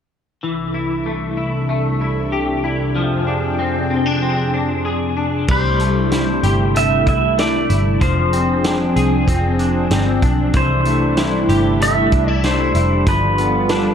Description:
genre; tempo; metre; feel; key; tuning
dream pop; 95 BPM; 4/4; straight; C major; A4 = 440 Hz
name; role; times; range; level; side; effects
warm analog pad; sustained chords; 0.4-13.9 s; C2 to G5; -20 LUFS; right 1 dB; chorus
electric guitar at the edge of break-up; arpeggios; 0.4-13.9 s; E3 to Ab4; -21 LUFS; left 4 dB; ensemble chorus, ping-pong delay
pedal steel guitar; melody; 5.5-13.9 s; B4 to E5; -20 LUFS; equal; ping-pong delay
vintage muted picked electric bass; bass; 5.5-13.9 s; F1 to C2; -20 LUFS; right 1 dB; none
vintage drum kit; drums; 5.5-13.8 s; crash cymbal, hi-hat, kick drum, snare drum; -21 LUFS; equal; none
room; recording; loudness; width
light reverb, small room ambience; dark, warm production; -15 LUFS; side -8 dB against mid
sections
0.4-5.5 A section; 5.5-13.9 B section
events
none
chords
0.4 C6; 3.0 Fm6; 5.5 C6; 8.0 Fm6; 10.5 C6; 13.1 G7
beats
| 0.44 1.07 1.70 2.33 | 2.96 3.60 4.23 4.86 | 5.49 6.12 6.75 7.38 | 8.02 8.65 9.28 9.91 | 10.54 11.17 11.80 12.44 | 13.07 13.70

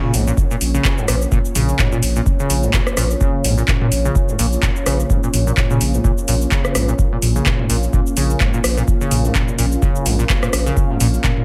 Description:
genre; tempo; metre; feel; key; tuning
acid house; 127 BPM; 4/4; swing 56% on 16ths; Bb minor pentatonic; A4 = 440 Hz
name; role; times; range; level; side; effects
dark analog pad; sustained chords; 0.0-11.4 s; Bb3 to F5; -27 LUFS; equal; chorus, sidechain pumping
liquid acid bass; riff; 0.0-11.3 s; Ab2 to Db3; -25 LUFS; equal; lush chorus, sidechain pumping, dub echo
saturated sub bass; bass; 0.0-11.4 s; Bb1 to Bb2; -22 LUFS; equal; sidechain pumping
booming analog drum machine; drums; 0.0-11.4 s; handclaps, hi-hat, rim click, shaker, toms; -23 LUFS; equal; none
electronic kick drum; drums; 0.4-11.3 s; none; -20 LUFS; equal; none
room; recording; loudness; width
light reverb; none; -17 LUFS; mono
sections
0.0-11.4 A section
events
none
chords
0.0 Bbm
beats
0.37 0.85 | 1.32 1.79 2.26 2.74 | 3.21 3.68 4.15 4.63 | 5.10 5.57 6.04 6.52 | 6.99 7.46 7.93 8.41 | 8.88 9.35 9.82 10.30 | 10.77 11.24

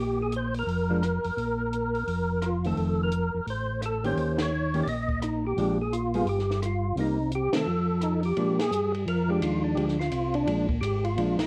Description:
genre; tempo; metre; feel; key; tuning
soul jazz organ trio; 171 BPM; 4/4; swing 62% on 8ths; Bb mixolydian; A4 = 441 Hz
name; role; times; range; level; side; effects
percussive tonewheel organ; melody; 0.0-11.5 s; D4 to Eb5; -32 LUFS; equal; slow rotary speaker, overdrive, chorus vibrato
tonewheel organ; bass; 0.0-11.4 s; F1 to C3; -31 LUFS; equal; chorus vibrato, slow rotary speaker
compact cocktail drum kit; drums; 0.3-11.4 s; hi-hat, kick drum, ride cymbal, rim click, snare drum; -38 LUFS; equal; none
hollow-body jazz guitar; accompaniment; 0.9-11.4 s; Eb3 to Ab4; -32 LUFS; equal; none
room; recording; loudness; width
moderate studio reverb, RT60 0.8 s; worn, warbling old tape, cassette tape, warbly pitch drift; -27 LUFS; mono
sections
0.0-8.4 A section; 8.4-11.5 A section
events
band accent 4.3, 7.5, 8.5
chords
0.0 Bb5; 2.8 F7; 4.2 Eb7; 5.6 Bb7; 6.3 Fsus2/G; 7.0 Cm7; 7.7 F; 8.4 Bb7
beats
0.32 0.67 1.02 | 1.37 1.72 2.07 2.42 | 2.77 3.12 3.47 3.82 | 4.17 4.52 4.87 5.22 | 5.57 5.92 6.27 6.62 | 6.97 7.32 7.67 8.02 | 8.37 8.72 9.07 9.42 | 9.77 10.12 10.47 10.82 | 11.17

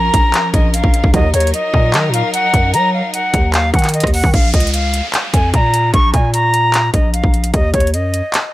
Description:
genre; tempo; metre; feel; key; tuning
hip hop, trap; 150 BPM; 4/4; half-time; Bb minor; A4 = 438 Hz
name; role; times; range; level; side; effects
reedy silver concert flute; melody; 0.0-8.5 s; Db5 to Db6; -17 LUFS; equal; tape echo
rich symphonic string section; sustained chords; 0.0-4.3 s; F3 to Bb4; -22 LUFS; left 2 dB; none
growling 808-style bass; bass; 0.0-8.2 s; Bb1 to Gb3; -16 LUFS; equal; none
trap drum kit; drums; 0.1-8.4 s; handclaps, hi-hat, kick drum, rim click; -15 LUFS; equal; none
dark brass ensemble; stabs; 1.1-1.3 s; Eb2 to Gb3; -22 LUFS; right 6 dB; none
downlifter; sound effects; 4.3-7.5 s; none; -26 LUFS; equal; none
room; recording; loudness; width
studio ambience; none; -12 LUFS; side -16 dB against mid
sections
0.0-4.3 A section; 4.3-8.5 B section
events
none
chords
0.0 Bbm; 1.1 Ebm; 4.3 Bbm; 7.5 Ebm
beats
0.34 0.74 | 1.14 1.54 1.94 2.34 | 2.74 3.14 3.54 3.94 | 4.34 4.74 5.14 5.54 | 5.94 6.34 6.74 7.14 | 7.54 7.94 8.34

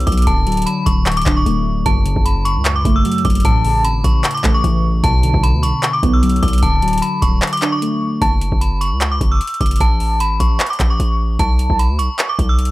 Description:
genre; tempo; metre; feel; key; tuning
hip hop, trap; 151 BPM; 4/4; half-time; F# minor; A4 = 445 Hz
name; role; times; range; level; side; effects
metallic FM bell; melody; 0.0-12.7 s; A5 to E6; -20 LUFS; equal; chorus, phaser, low-pass filter
muted felt-like synth keys; accompaniment; 0.0-8.2 s; F#2 to D4; -20 LUFS; left 1 dB; chorus, phaser, low-pass filter
hard-hitting 808-style bass; bass; 0.0-12.7 s; D1 to D2; -18 LUFS; equal; none
booming analog drum machine; drums; 0.0-12.7 s; handclaps, hi-hat, kick drum; -17 LUFS; equal; none
room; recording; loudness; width
little or no reverb; dry, gritty hardware recording; -13 LUFS; side -17 dB against mid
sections
0.0-8.2 A section; 8.2-12.7 B section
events
break 7.4-8.2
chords
0.3 D; 1.9 F#m; 3.4 A; 5.0 Bm; 6.6 D; 8.2 F#m; 9.8 A; 11.4 N.C.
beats
| 0.27 0.67 1.06 1.46 | 1.86 2.25 2.65 3.05 | 3.45 3.85 4.24 4.64 | 5.04 5.43 5.83 6.23 | 6.63 7.02 7.42 7.82 | 8.21 8.61 9.01 9.41 | 9.80 10.20 10.60 11.00 | 11.39 11.79 12.19 12.59

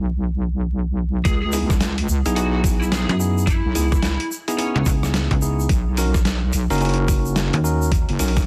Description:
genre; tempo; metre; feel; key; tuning
glitch hop; 108 BPM; 4/4; swing 62% on 16ths; C# dorian; A4 = 438 Hz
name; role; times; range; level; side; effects
wobble bass; bass; 0.0-8.5 s; F#1 to C#2; -23 LUFS; equal; chorus
electronic kick drum; drums; 1.2-8.5 s; none; -22 LUFS; equal; overdrive, studio reverb
lead guitar through a small cranked amp; melody; 1.3-4.8 s; C#4 to G#4; -32 LUFS; equal; overdrive, vintage 12-bit sampler grit, dub echo
boom bap sampler-style drum kit; drums; 1.3-8.5 s; hi-hat, rim click, snare drum; -29 LUFS; equal; studio reverb
egg shaker; percussion; 1.3-8.5 s; none; -35 LUFS; equal; none
bell-like tine electric piano; stabs; 1.5-8.4 s; B3 to A#4; -28 LUFS; equal; vintage 12-bit sampler grit, sidechain pumping, dub echo
slap-like FM bass; bass; 3.1-8.1 s; C#2 to F#2; -22 LUFS; equal; none
room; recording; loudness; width
little or no reverb; dense, heavily limited modern master, vinyl crackle; -20 LUFS; mono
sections
0.0-1.3 A section; 1.3-8.5 B section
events
drop 1.3-8.5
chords
0.0 N.C.; 1.3 C#m7; 5.7 Bmaj7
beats
0.14 0.70 | 1.25 1.81 2.36 2.92 | 3.48 4.03 4.59 5.14 | 5.70 6.25 6.81 7.36 | 7.92

